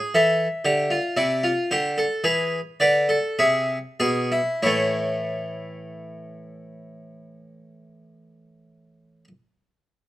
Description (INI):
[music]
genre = classical, baroque-style 3-part fugue for harpsichord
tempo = 47-61 BPM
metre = 4/4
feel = straight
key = unclear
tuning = A4 = 439 Hz
[part]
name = harpsichord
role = solo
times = 0.0-9.3 s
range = A2 to G#5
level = -20 LUFS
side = equal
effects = none
[sound]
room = light reverb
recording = none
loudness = -20 LUFS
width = side -15 dB against mid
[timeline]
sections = 0.0-4.6 A section; 4.6-9.7 B section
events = slowing down 0.0-4.6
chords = 0.2 Am; 2.2 E7; 4.6 A